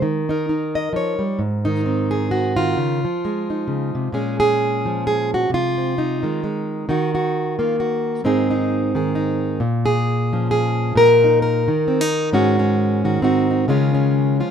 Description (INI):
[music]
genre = folk, solo fingerstyle acoustic guitar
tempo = 132 BPM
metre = 3/4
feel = swing 58% on 8ths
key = unclear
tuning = A4 = 440 Hz
[part]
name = fingerpicked plugged-in steel-string acoustic guitar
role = solo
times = 0.0-14.5 s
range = Ab2 to Eb5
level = -17 LUFS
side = equal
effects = none
[sound]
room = light reverb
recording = minimal, uncompressed stereo recording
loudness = -17 LUFS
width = side -8 dB against mid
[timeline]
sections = 0.0-4.1 A section; 4.1-14.5 B section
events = none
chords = 0.0 Eb; 1.4 Ab7; 2.8 Dbadd9; 4.1 Bbm7; 5.5 Ab/C; 6.9 Ebm; 8.2 Ab; 9.6 Bbm; 11.0 Eb5/Bb; 12.3 Ab7sus4; 13.2 Ab7; 13.7 Db